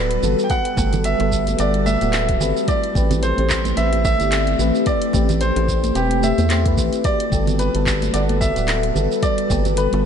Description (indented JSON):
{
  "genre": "sunset chillout",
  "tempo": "110 BPM",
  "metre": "4/4",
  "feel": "swing 57% on 16ths",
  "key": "G major",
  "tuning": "A4 = 443 Hz",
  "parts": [
    { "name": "clear baby grand piano", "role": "melody", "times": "0.0-10.1 s", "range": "G4 to G5", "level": "-23 LUFS", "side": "right 1 dB", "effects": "tape echo" },
    { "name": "mellow FM electric piano", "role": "accompaniment", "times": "0.0-10.1 s", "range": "G3 to F#5", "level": "-25 LUFS", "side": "moving between left 5 dB and right 2 dB", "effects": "chorus, auto-pan, cassette tape, tape echo" },
    { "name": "ethereal airy pad", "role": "sustained chords", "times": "0.0-10.1 s", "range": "G3 to B4", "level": "-24 LUFS", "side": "left 1 dB", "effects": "ensemble chorus, built-in reverb" },
    { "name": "kalimba", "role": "arpeggios", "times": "0.0-10.0 s", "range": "E4 to G5", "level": "-30 LUFS", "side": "left 3 dB", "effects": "tape echo" },
    { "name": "round analog bass", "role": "bass", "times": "0.0-10.1 s", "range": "D1 to E2", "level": "-21 LUFS", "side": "equal", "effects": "none" },
    { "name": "deep house drum kit", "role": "drums", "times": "0.1-10.0 s", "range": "handclaps, hi-hat, shaker", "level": "-27 LUFS", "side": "right 1 dB", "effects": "none" },
    { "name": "congas and bongos", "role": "percussion", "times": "0.2-10.0 s", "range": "none", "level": "-28 LUFS", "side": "right 4 dB", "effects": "none" },
    { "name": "electronic kick drum", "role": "drums", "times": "0.5-9.6 s", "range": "none", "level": "-22 LUFS", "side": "equal", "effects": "none" }
  ],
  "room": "light reverb",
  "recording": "nothing above 10.8 kHz",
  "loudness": "-16 LUFS",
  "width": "side -8 dB against mid",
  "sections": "0.0-10.1 A section",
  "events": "none",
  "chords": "0.0 Gmaj9; 2.7 Am9; 7.0 Gmaj9"
}